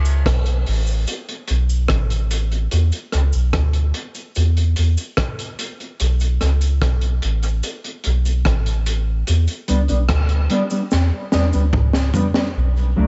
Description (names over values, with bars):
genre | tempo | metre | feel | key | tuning
dub reggae | 73 BPM | 4/4 | straight | unclear | A4 = 439 Hz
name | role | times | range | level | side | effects
soft dub sub bass | bass | 0.0-13.1 s | A1 to E2 | -19 LUFS | equal | none
cabasa | percussion | 0.1-12.3 s | none | -40 LUFS | equal | dub echo
crunchy breakbeat drum kit | drums | 0.3-12.5 s | hi-hat, kick drum, rim click, snare drum, toms | -26 LUFS | equal | none
mellow electric guitar | accompaniment | 9.7-13.1 s | F#3 to D4 | -24 LUFS | equal | analog chorus, dub echo
room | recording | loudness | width
little or no reverb | echo-heavy mix, nothing above 7.9 kHz | -19 LUFS | mono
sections
0.0-12.6 A section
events
break 0.0-9.3; drum fill 10.9-12.6; part muted 12.6-13.1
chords
0.0 Asus2; 2.7 E5; 6.0 Aadd9; 9.3 Em7; 12.6 Bm7